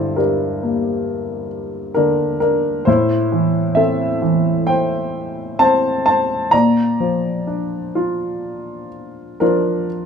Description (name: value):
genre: classical, lyrical solo piano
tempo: 60-67 BPM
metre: 4/4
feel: rubato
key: Bb lydian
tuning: A4 = 442 Hz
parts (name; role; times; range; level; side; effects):
- dark grand piano; solo; 0.0-10.1 s; G2 to Bb5; -16 LUFS; equal; none
room: light reverb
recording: none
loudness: -15 LUFS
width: side -6 dB against mid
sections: 0.0-10.1 A section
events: none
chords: 0.0 Gm; 2.9 Am; 6.5 Bb